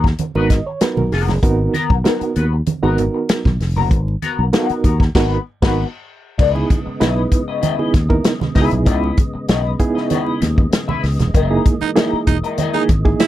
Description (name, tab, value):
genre	funk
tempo	97 BPM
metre	4/4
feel	straight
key	unclear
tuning	A4 = 440 Hz
part	semi-hollow electric guitar	accompaniment	0.0-13.2 s	B3 to E5	-22 LUFS	left 8 dB	wah, lush chorus
part	fingered electric bass	bass	0.0-13.1 s	E1 to D#2	-18 LUFS	equal	none
part	warm soul drum kit	drums	0.0-13.3 s	crash cymbal, hi-hat, kick drum, snare drum	-16 LUFS	equal	none
part	congas	percussion	0.2-13.3 s	none	-25 LUFS	right 4 dB	none
part	bright reed electric piano	stabs	0.4-13.3 s	A#3 to D#5	-19 LUFS	right 4 dB	fast tremolo
part	mellow tonewheel organ	sustained chords	6.4-13.3 s	C#3 to D#5	-27 LUFS	equal	slow rotary speaker, chorus vibrato
part	growling baritone saxophone	second line	11.8-13.3 s	D#4 to E4	-19 LUFS	right 10 dB	none
room	little or no reverb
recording	none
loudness	-14 LUFS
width	side -13 dB against mid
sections	0.0-6.4 A section; 6.4-13.3 B section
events	reed electric piano fill 0.2-1.4; band accent 5.1-6.4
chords	0.0 G#m9; 6.4 C#m9; 11.3 F#13